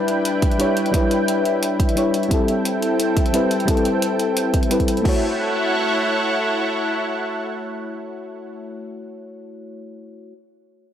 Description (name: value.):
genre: liquid drum and bass.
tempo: 175 BPM.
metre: 4/4.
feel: straight.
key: F# phrygian.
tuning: A4 = 440 Hz.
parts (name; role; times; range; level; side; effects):
mellow FM electric piano; accompaniment; 0.0-10.3 s; G3 to C#5; -22 LUFS; left 2 dB; chorus, tape echo.
lush unison pad; sustained chords; 0.0-8.6 s; C4 to G5; -23 LUFS; right 1 dB; chorus, sidechain pumping.
jungle sampler-style drum kit; drums; 0.1-5.1 s; crash cymbal, hi-hat; -29 LUFS; equal; none.
electronic kick drum; drums; 0.4-5.1 s; none; -20 LUFS; right 1 dB; none.
room: moderate plate reverb, RT60 1.3 s.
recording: none.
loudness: -17 LUFS.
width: side -9 dB against mid.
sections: 0.0-5.1 A section; 5.1-7.8 B section.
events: none.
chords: 0.0 Em7; 2.3 Am7; 5.1 F#m7.